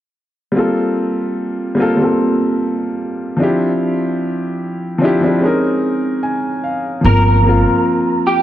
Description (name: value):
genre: lo-fi hip hop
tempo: 74 BPM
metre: 4/4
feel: swing 56% on 16ths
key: G minor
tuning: A4 = 439 Hz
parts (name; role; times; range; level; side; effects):
- warm upright piano; accompaniment; 0.5-8.4 s; F3 to Ab5; -15 LUFS; equal; cassette tape
- upright bass; bass; 7.0-7.6 s; G1; -13 LUFS; equal; none
- electric guitar through a small old amp; melody; 7.1-8.4 s; G4 to Bb4; -16 LUFS; equal; ensemble chorus, analog delay
room: moderate plate reverb, RT60 2.5 s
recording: dark, warm production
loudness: -14 LUFS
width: side -12 dB against mid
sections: 0.6-7.0 A section; 7.0-8.4 B section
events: upright piano fill 5.8-7.0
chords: 0.6 Gm11; 3.4 Dm11; 5.4 Bbm11; 7.0 Gm11